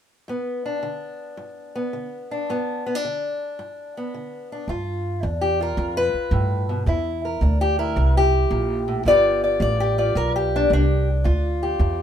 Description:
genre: acoustic country blues, solo or duo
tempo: 110 BPM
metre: 4/4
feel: swing 67% on 8ths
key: G mixolydian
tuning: A4 = 440 Hz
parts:
  - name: fingerpicked old ladder-braced acoustic guitar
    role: melody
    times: 0.3-12.0 s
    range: G2 to D5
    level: -22 LUFS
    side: left 1 dB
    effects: none
  - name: upright bass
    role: bass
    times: 4.7-12.0 s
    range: G1 to G2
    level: -22 LUFS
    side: right 1 dB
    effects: none
room: moderate small room reverb, RT60 0.6 s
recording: minimal, uncompressed stereo recording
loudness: -19 LUFS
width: side -9 dB against mid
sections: 0.3-4.7 A section; 4.7-12.0 B section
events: none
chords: 0.3 G; 4.7 G7; 6.9 C7; 9.1 G7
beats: | 0.28 0.83 1.38 1.93 | 2.48 3.03 3.58 4.13 | 4.68 5.23 5.78 6.32 | 6.87 7.42 7.97 8.51 | 9.06 9.61 10.16 10.70 | 11.25 11.80

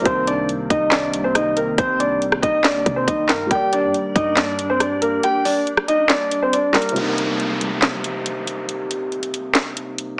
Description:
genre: hip hop, trap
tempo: 139 BPM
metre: 4/4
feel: half-time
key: C minor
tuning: A4 = 435 Hz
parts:
  - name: dark concert grand piano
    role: melody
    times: 0.0-7.0 s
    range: Bb3 to G5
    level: -21 LUFS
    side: equal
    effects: none
  - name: felt-muted upright piano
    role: accompaniment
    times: 0.0-10.2 s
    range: C3 to D5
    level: -29 LUFS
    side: equal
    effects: none
  - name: clean 808-style bass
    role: bass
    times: 0.0-5.2 s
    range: G1 to C3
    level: -36 LUFS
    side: equal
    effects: none
  - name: glassy FM pad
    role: sustained chords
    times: 0.9-6.9 s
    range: C3 to D4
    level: -33 LUFS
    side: equal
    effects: ensemble chorus, built-in reverb
  - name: trap drum kit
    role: drums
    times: 0.1-10.1 s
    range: handclaps, hi-hat, kick drum, rim click, snare drum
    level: -22 LUFS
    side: equal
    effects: none
  - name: downlifter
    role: sound effects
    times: 7.0-10.2 s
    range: none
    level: -30 LUFS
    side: equal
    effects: none
room: moderate digital room reverb, RT60 1.2 s, digital ambience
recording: heavily compressed radio sound, small speaker sound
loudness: -20 LUFS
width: mono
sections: 0.0-7.0 A section; 7.0-10.2 B section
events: kick muted 5.2-7.0; break 7.0-10.2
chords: 0.1 Cm7; 3.5 Gm; 7.0 Cm7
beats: | 0.06 0.49 0.92 1.35 | 1.78 2.21 2.65 3.08 | 3.51 3.94 4.37 4.80 | 5.24 5.67 6.10 6.53 | 6.96 7.39 7.83 8.26 | 8.69 9.12 9.55 9.98

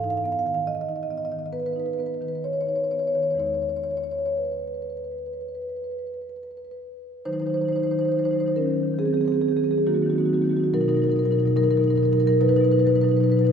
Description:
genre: classical, contemporary piece for solo marimba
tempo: 61-73 BPM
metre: 4/4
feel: rubato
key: Eb minor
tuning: A4 = 440 Hz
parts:
  - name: marimba with medium mallets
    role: solo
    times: 0.0-13.5 s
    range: E2 to F5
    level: -21 LUFS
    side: equal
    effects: none
room: wet church reverb, RT60 3.7 s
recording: recorded in a church or concert hall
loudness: -21 LUFS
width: side -7 dB against mid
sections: 0.0-7.2 A section; 7.2-13.5 B section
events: none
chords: 0.0 Abm6; 3.4 Emaj7; 7.2 Ebm6; 10.7 Bmaj7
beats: 0.67 1.53 2.44 | 3.40 4.37 5.34 6.30 | 7.25 8.12 8.99 9.87 | 10.73 11.56 12.40 13.23

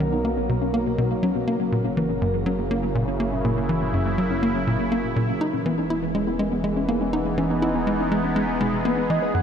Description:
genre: ambient, sequencer-driven space music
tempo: 122 BPM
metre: 4/4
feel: straight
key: unclear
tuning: A4 = 440 Hz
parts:
  - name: sweeping resonant pad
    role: sustained chords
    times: 0.0-9.4 s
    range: B2 to A#4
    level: -26 LUFS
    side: right 1 dB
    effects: chorus, shimmer reverb
  - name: warbly dusty pluck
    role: arpeggios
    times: 0.0-9.3 s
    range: B2 to B4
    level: -28 LUFS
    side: moving between left 9 dB and right 1 dB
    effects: chorus, auto-pan, shimmer reverb, analog delay
  - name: tight sequencer bass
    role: riff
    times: 0.0-9.4 s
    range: F#2 to E4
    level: -24 LUFS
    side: equal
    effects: shimmer reverb, analog delay
  - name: warm sub bass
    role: bass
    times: 0.0-9.4 s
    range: E1 to B1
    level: -34 LUFS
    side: equal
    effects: none
  - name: breathy flute-like synth lead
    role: melody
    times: 8.9-9.4 s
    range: B4 to F#5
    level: -25 LUFS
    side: right 3 dB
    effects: analog chorus, shimmer reverb
room: moderate huge ambient reverb, RT60 7.8 s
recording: none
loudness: -21 LUFS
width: side -8 dB against mid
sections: 0.0-9.3 A section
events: none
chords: 0.0 Bmaj7; 1.5 F#7; 5.4 Emaj7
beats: 0.00 0.49 0.98 | 1.48 1.97 2.46 2.95 | 3.44 3.93 4.43 4.92 | 5.41 5.90 6.39 6.88 | 7.38 7.87 8.36 8.85 | 9.34

